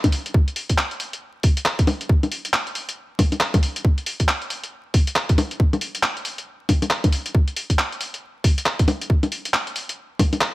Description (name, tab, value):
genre	future garage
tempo	137 BPM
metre	4/4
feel	swing 61% on 16ths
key	none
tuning	none
part	electronic kick drum	drums	0.0-10.3 s	none	-18 LUFS	equal	none
part	lo-fi sampler-style drum kit	drums	0.0-10.5 s	bongos, handclaps, hi-hat	-22 LUFS	left 1 dB	none
room	digital ambience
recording	vinyl crackle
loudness	-19 LUFS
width	side -19 dB against mid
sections	0.0-10.5 A section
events	none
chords	none